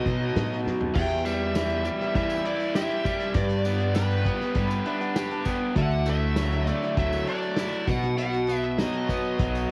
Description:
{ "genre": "folk rock and heartland rock", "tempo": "100 BPM", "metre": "4/4", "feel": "straight", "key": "E minor", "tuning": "A4 = 440 Hz", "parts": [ { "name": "nasal lead guitar with a parked wah", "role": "melody", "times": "0.0-9.7 s", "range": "B4 to G5", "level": "-34 LUFS", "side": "equal", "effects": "overdrive, cassette tape" }, { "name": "dark grand piano", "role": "accompaniment", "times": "0.0-9.7 s", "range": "F#4 to B5", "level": "-41 LUFS", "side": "equal", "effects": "none" }, { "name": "picked twelve-string acoustic guitar", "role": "accompaniment", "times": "0.0-9.7 s", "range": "E2 to G4", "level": "-36 LUFS", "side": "equal", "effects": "none" }, { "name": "crunchy overdriven guitar", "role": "riff", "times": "0.0-9.7 s", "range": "E2 to G4", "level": "-31 LUFS", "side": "equal", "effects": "none" }, { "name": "upright bass", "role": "bass", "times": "0.1-9.6 s", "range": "B1 to B2", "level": "-30 LUFS", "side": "equal", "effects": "none" }, { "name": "natural country drum kit", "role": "drums", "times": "0.1-9.7 s", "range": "crash cymbal, hi-hat, kick drum, snare drum, toms", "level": "-32 LUFS", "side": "equal", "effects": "cassette tape" }, { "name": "tambourine", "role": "percussion", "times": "1.0-9.7 s", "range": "none", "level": "-52 LUFS", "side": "equal", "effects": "none" } ], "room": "light reverb, small room reverb", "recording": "home recording on cassette, vinyl crackle", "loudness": "-26 LUFS", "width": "mono", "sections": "1.0-9.7 A section", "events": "drum fill 0.7; grand piano fill 4.6-5.8", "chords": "0.0 B; 1.0 Em; 3.4 G; 5.8 Dadd9; 7.9 B" }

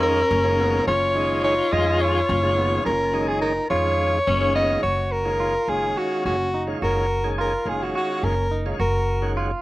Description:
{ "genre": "progressive instrumental, progressive", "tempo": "212 BPM (eighths)", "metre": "7/8", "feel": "straight", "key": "F# major", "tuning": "A4 = 440 Hz", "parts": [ { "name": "warm soprano saxophone", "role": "melody", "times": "0.0-9.3 s", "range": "F#4 to D#5", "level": "-22 LUFS", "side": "equal", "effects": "slapback echo" }, { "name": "growling alto saxophone", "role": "second line", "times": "0.0-4.8 s", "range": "C#4 to E#4", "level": "-26 LUFS", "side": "left 3 dB", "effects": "slapback echo" }, { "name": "tonewheel organ", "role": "accompaniment", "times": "0.0-9.5 s", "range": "D#3 to G#4", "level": "-28 LUFS", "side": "right 1 dB", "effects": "fast rotary speaker, slapback echo" }, { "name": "clean electric guitar", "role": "arpeggios", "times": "0.0-9.6 s", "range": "B3 to F#4", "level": "-30 LUFS", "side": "right 3 dB", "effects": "slapback echo" }, { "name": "upright bass", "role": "bass", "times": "0.0-9.5 s", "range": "F#1 to E#2", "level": "-26 LUFS", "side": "equal", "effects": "none" } ], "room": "little or no reverb", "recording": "recorded outdoors, with no room sound", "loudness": "-19 LUFS", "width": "side -17 dB against mid", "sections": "0.0-4.8 A section; 4.8-9.6 B section", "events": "none", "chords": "0.0 F#maj7; 4.8 F#5" }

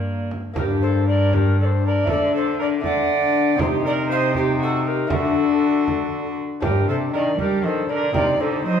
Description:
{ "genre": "classical, renaissance-style consort dance", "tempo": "79 BPM (dotted quarters)", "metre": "6/8", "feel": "straight", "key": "G harmonic minor", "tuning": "A4 = 439 Hz", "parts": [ { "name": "alto recorder", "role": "melody", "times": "0.0-8.8 s", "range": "A4 to F#5", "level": "-26 LUFS", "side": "left 1 dB", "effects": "none" }, { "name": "rich viola", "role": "second line", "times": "0.0-8.8 s", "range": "Bb3 to D5", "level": "-25 LUFS", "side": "right 5 dB", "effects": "none" }, { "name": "lute", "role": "accompaniment", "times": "0.0-8.8 s", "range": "G2 to G4", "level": "-26 LUFS", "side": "left 7 dB", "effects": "none" }, { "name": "warm trombone", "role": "accompaniment", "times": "0.0-8.8 s", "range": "Bb3 to Eb4", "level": "-26 LUFS", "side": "left 6 dB", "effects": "none" }, { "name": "warm cello", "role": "bass", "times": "0.0-8.8 s", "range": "G2 to G3", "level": "-23 LUFS", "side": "right 1 dB", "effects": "none" }, { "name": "frame drum", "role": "percussion", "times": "0.3-8.4 s", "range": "none", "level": "-29 LUFS", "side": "right 3 dB", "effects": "none" } ], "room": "wet stone room reverb, RT60 1.4 s", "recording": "heard from further back in the room", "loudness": "-18 LUFS", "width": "side -8 dB against mid", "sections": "0.6-8.8 A section", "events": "none", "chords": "0.0 Gm; 2.1 D; 3.6 Cm; 5.1 D; 6.6 G5; 8.2 Cm" }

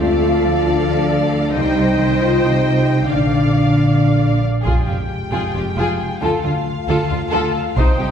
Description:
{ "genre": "cinematic, epic orchestral film score", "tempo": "270 BPM (eighths)", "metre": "7/8", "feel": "straight", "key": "unclear", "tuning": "A4 = 440 Hz", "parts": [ { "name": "warm symphonic violin section", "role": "melody", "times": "0.0-8.1 s", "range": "F5 to G5", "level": "-27 LUFS", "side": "left 3 dB", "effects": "none" }, { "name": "rich symphonic violin section", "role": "second line", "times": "0.0-8.1 s", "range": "F4 to F5", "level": "-24 LUFS", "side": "left 2 dB", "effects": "none" }, { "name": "warm symphonic viola section", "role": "accompaniment", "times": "0.0-8.1 s", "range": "Eb4 to D5", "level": "-24 LUFS", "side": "right 1 dB", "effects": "none" }, { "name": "mellow French horn section", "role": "sustained chords", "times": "0.0-8.1 s", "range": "G3 to G4", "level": "-20 LUFS", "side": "left 2 dB", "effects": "none" }, { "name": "rich symphonic cello section", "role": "bass", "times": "0.0-8.1 s", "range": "F2 to A3", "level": "-22 LUFS", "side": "right 1 dB", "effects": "none" }, { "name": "rich symphonic double bass section", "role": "bass", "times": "0.0-8.1 s", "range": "F1 to D2", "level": "-21 LUFS", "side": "right 1 dB", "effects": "none" }, { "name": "taiko ensemble", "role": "drums", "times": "4.7-8.1 s", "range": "none", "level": "-18 LUFS", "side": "equal", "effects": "none" } ], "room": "wet scoring stage reverb, RT60 1.8 s", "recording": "heard from further back in the room", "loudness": "-14 LUFS", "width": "side -8 dB against mid", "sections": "0.0-4.7 A section; 4.7-8.1 B section", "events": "none", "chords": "0.0 Dm; 1.6 Cm; 3.1 Bb; 4.7 Fmadd9; 6.2 Dm" }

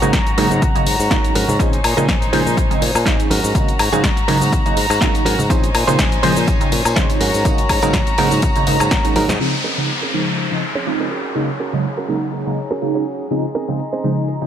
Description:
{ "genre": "filtered disco house", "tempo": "123 BPM", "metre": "4/4", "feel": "swing 54% on 16ths", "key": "Bb minor", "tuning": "A4 = 440 Hz", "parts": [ { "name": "funky polysynth comp", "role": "accompaniment", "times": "0.0-14.5 s", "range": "Db3 to C5", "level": "-20 LUFS", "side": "right 2 dB", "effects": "chorus, phaser, sidechain pumping, low-pass filter" }, { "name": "clear studio violin section", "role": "sustained chords", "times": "0.0-14.5 s", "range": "Db4 to C6", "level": "-23 LUFS", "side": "left 1 dB", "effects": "sidechain pumping, low-pass filter" }, { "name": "direct-recorded clean electric guitar", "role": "riff", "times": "0.0-14.3 s", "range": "C4 to Db5", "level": "-24 LUFS", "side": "right 4 dB", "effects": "sidechain pumping, low-pass filter" }, { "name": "modern bright fingered electric bass", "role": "bass", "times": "0.0-9.4 s", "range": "Ab1 to Bb2", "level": "-22 LUFS", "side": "equal", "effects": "sidechain pumping, low-pass filter" }, { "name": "house drum kit", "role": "drums", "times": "0.0-14.5 s", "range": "crash cymbal, hi-hat, shaker, snare drum, woodblock", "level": "-22 LUFS", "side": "left 2 dB", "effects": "sidechain pumping on hats, low-pass filter on hats, sidechain pumping on cymbals, low-pass filter on cymbals, sidechain pumping on perc, low-pass filter on perc, low-pass filter on snare" }, { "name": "tambourine and congas", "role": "percussion", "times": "0.0-9.4 s", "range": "none", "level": "-30 LUFS", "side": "right 1 dB", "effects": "none" }, { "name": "electronic kick drum", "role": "drums", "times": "0.1-9.0 s", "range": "none", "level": "-19 LUFS", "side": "equal", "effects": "none" }, { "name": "downlifter", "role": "sound effects", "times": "9.4-13.3 s", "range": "none", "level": "-25 LUFS", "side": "left 1 dB", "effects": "none" } ], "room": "light reverb", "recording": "none", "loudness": "-14 LUFS", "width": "side -9 dB against mid", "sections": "0.0-9.4 A section; 9.4-14.5 B section", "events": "drum fill 8.9-9.4; band accent 9.3; filter sweep 9.4-14.5", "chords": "0.0 Ab9sus4; 1.6 Bbm11; 3.3 Ab9sus4; 5.5 Bbm11; 7.2 Ab9sus4; 9.4 Bbm11; 11.1 Ab9sus4; 13.3 Bbm11" }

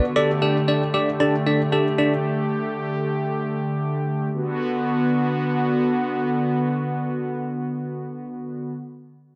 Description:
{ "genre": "synth-pop", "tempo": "free time", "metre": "none", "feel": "none", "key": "B minor", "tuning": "A4 = 440 Hz", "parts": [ { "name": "bell-like tine electric piano", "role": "accompaniment", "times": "0.0-2.1 s", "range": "D4 to D5", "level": "-23 LUFS", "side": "equal", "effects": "phaser" }, { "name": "brassy analog pad", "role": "sustained chords", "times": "0.0-8.7 s", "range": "D3 to G4", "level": "-25 LUFS", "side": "equal", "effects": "chorus" } ], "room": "wet scoring stage reverb, RT60 1.8 s, digital ambience", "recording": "dark, warm production", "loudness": "-23 LUFS", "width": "mono", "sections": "0.0-4.3 A section; 4.3-8.5 B section", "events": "none", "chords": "0.2 Gsus2; 4.3 Bm" }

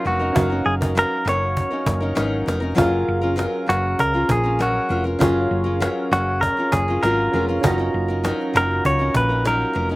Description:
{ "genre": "indie pop, bedroom pop", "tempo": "99 BPM", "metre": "4/4", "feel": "straight", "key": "F# major", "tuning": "A4 = 439 Hz", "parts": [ { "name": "direct-recorded clean electric guitar", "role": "melody", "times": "0.0-9.9 s", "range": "F#4 to C#5", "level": "-21 LUFS", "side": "equal", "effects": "none" }, { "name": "picked steel-string acoustic guitar", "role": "accompaniment", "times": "0.0-10.0 s", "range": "F#3 to A#4", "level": "-23 LUFS", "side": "left 2 dB", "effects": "warbly pitch drift" }, { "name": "soft electric-piano-like synth keys", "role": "accompaniment", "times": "0.0-10.0 s", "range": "F#3 to A#5", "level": "-27 LUFS", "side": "right 3 dB", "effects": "chorus, slapback echo" }, { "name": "hollow-body short-scale fingered electric bass", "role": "bass", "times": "0.1-10.0 s", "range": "E#1 to C#2", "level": "-24 LUFS", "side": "equal", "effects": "none" }, { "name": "cajon", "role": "drums", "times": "0.1-10.0 s", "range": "none", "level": "-24 LUFS", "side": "equal", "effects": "none" } ], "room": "little or no reverb", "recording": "recorded outdoors, with no room sound", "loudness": "-18 LUFS", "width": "side -19 dB against mid", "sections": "0.0-10.0 A section", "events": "none", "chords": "0.0 D#m7; 2.8 F#maj7; 7.6 D#m7/F#" }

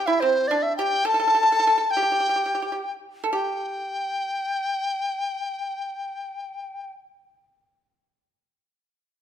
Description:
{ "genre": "chinese traditional, Chinese chamber ensemble", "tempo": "74-109 BPM", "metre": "2/4", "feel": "rubato", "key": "G zhi mode", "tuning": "A4 = 441 Hz", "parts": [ { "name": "reedy large dizi", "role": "melody", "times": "0.0-6.9 s", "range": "C5 to A5", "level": "-23 LUFS", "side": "left 2 dB", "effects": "none" }, { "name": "pipa", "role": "second line", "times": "0.0-6.9 s", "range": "C4 to A4", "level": "-25 LUFS", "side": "right 4 dB", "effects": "none" } ], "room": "moderate recital hall reverb, RT60 1.7 s", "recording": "none", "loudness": "-22 LUFS", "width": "side -9 dB against mid", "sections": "0.0-3.3 A section; 3.3-6.5 B section", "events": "slowing down 0.8-3.3", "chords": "none" }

